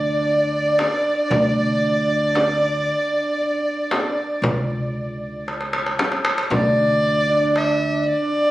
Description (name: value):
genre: Arabic maqam ensemble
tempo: 115 BPM (eighths)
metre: 10/8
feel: straight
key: unclear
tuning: A4 = 442 Hz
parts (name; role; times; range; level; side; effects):
- dark violin; melody; 0.0-8.5 s; D5 to Eb5+50c; -21 LUFS; equal; none
- soft octave-layered synth lead; second line; 0.0-8.5 s; D5; -23 LUFS; right 2 dB; chorus, tremolo
- upright bass; bass; 0.0-8.1 s; C#2 to D2; -26 LUFS; equal; none
- darbuka; percussion; 0.3-8.2 s; none; -24 LUFS; equal; none
- frame drum; percussion; 0.8-6.8 s; none; -24 LUFS; left 1 dB; none
room: light reverb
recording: recorded on a phone in the room, studio reverb, compression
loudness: -18 LUFS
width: side -16 dB against mid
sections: 0.0-6.5 A section; 6.5-8.5 B section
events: drum fill 5.5-6.5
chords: none